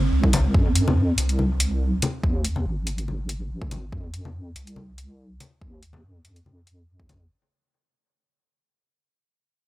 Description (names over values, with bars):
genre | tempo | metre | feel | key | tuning
deep dubstep | 142 BPM | 4/4 | swing 54% on 16ths, half-time | unclear | A4 = 440 Hz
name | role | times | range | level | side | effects
deep dark ambient pad | sustained chords | 0.0-7.4 s | C4 | -32 LUFS | right 5 dB | chorus, built-in reverb
deep soft wobble bass | bass | 0.0-7.3 s | G1 to F2 | -24 LUFS | equal | chorus
electronic kick drum | drums | 0.2-7.2 s | none | -23 LUFS | equal | overdrive, studio reverb
electronic hi-hat | drums | 0.3-7.2 s | none | -29 LUFS | left 1 dB | overdrive, studio reverb
congas | percussion | 0.3-7.2 s | none | -29 LUFS | left 2 dB | dub echo
room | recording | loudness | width
little or no reverb | dry, gritty hardware recording | -21 LUFS | side -17 dB against mid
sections
0.0-7.3 A section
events
fade-out 0.0-7.3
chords
0.0 C5; 0.5 Fm